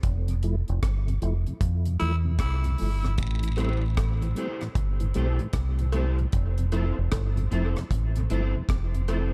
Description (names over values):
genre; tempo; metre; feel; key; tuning
dub reggae; 76 BPM; 4/4; swing 63% on 16ths; unclear; A4 = 435 Hz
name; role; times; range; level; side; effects
deep dub fingered electric bass; bass; 0.0-9.3 s; F1 to F2; -28 LUFS; equal; none
deep reggae drum kit; drums; 0.0-9.3 s; hi-hat, kick drum, rim click; -31 LUFS; equal; none
mellow tonewheel organ; accompaniment; 0.3-9.2 s; F2 to E4; -37 LUFS; equal; chorus vibrato, slow rotary speaker, dub echo
raspy tenor saxophone; second line; 2.0-3.1 s; E4; -40 LUFS; equal; dub echo
jawbone-type rattle and cowbell; percussion; 3.2-9.3 s; none; -43 LUFS; equal; dub echo
electric guitar at the edge of break-up; accompaniment; 3.6-9.3 s; A3 to C5; -38 LUFS; equal; ensemble chorus, dub echo
room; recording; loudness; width
studio ambience; echo-heavy mix; -26 LUFS; mono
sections
0.0-9.3 A section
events
break 0.0-3.2; band accent 0.0-3.2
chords
0.0 Fmaj7; 3.2 Am7; 6.3 Fmaj7